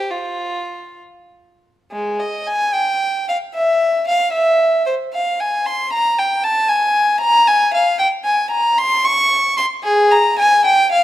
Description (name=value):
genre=classical, baroque-style suite movement for unaccompanied violin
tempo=76 BPM (dotted quarters)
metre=6/8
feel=rubato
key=unclear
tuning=A4 = 440 Hz
part: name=rich violin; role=solo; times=0.0-11.0 s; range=Ab3 to Db6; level=-14 LUFS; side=equal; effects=none
room=wet recital hall reverb, RT60 1.5 s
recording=none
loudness=-14 LUFS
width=side -13 dB against mid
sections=0.0-1.9 A section; 1.9-11.0 A section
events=none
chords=none